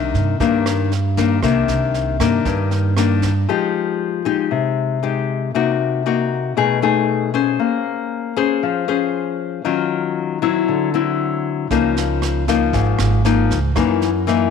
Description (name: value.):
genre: bossa nova.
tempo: 117 BPM.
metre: 4/4.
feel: straight.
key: C minor, F minor from 3.5 s.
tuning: A4 = 440 Hz.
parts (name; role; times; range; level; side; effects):
nylon-string guitar; accompaniment; 0.0-14.5 s; Gb2 to C5; -17 LUFS; left 8 dB; none.
upright bass; bass; 0.0-3.4, 11.7-14.5 s; Ab1 to G2; -20 LUFS; right 3 dB; none.
jazz brush drum kit; drums; 0.1-3.3, 11.7-14.3 s; kick drum, rim click, snare drum; -27 LUFS; right 7 dB; none.
room: light reverb, small room ambience.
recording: 1960s-style stereo with parts hard left and right.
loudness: -16 LUFS.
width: side -6 dB against mid.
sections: 0.0-3.5 A section; 3.5-14.5 B section.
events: none.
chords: 0.0 Cm9; 3.5 Fm9; 5.5 Cm7b5; 6.6 B13; 7.6 Bbm9; 9.7 Ebm9; 10.7 D9; 11.7 Db69; 13.8 Gb6.